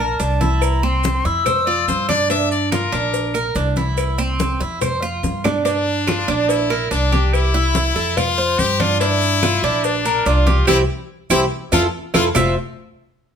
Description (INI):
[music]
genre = latin, Cuban son and guajira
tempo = 143 BPM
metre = 4/4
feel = straight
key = F major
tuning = A4 = 440 Hz
[part]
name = concert flute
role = melody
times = 0.0-2.1 s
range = A5 to E6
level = -21 LUFS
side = left 2 dB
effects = none
[part]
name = Cuban tres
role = arpeggios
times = 0.0-12.6 s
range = C4 to F5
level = -20 LUFS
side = right 2 dB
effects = none
[part]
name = upright bass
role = bass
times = 0.0-12.5 s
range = F1 to G2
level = -21 LUFS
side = equal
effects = none
[part]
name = congas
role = percussion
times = 0.2-12.5 s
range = none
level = -25 LUFS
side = left 2 dB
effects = none
[part]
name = cowbell and bongos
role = percussion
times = 0.2-12.4 s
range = none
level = -29 LUFS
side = left 4 dB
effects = none
[part]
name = maracas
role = percussion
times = 0.2-12.4 s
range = none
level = -33 LUFS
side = right 6 dB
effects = none
[part]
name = claves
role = percussion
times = 0.6-12.4 s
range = none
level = -29 LUFS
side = right 8 dB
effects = none
[part]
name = brilliant trumpet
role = second line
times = 1.7-12.5 s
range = C4 to E5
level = -21 LUFS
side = left 5 dB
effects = none
[sound]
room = moderate large studio reverb, RT60 0.9 s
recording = band playing live in one room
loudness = -16 LUFS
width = side -7 dB against mid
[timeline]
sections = 0.0-5.7 A section; 5.7-12.4 B section; 12.4-13.4 C section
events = drum fill 5.2-5.7, 11.7-12.4; band accent 10.7-12.4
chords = 0.0 Bbadd9; 0.6 C; 1.5 F5; 2.3 Gm7; 3.1 Bbadd9; 4.0 C; 4.8 F5; 5.7 Gm7; 6.5 Bbadd9; 7.3 C; 8.2 F5; 9.0 Gm7; 9.8 Bbadd9; 10.7 C; 11.5 Fmaj7; 12.4 F5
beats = 0.20 | 0.62 1.04 1.46 1.88 | 2.30 2.72 3.14 3.56 | 3.98 4.40 4.82 5.24 | 5.66 6.08 6.50 6.91 | 7.33 7.75 8.17 8.59 | 9.01 9.43 9.84 10.26 | 10.68 11.10 11.52 11.94 | 12.35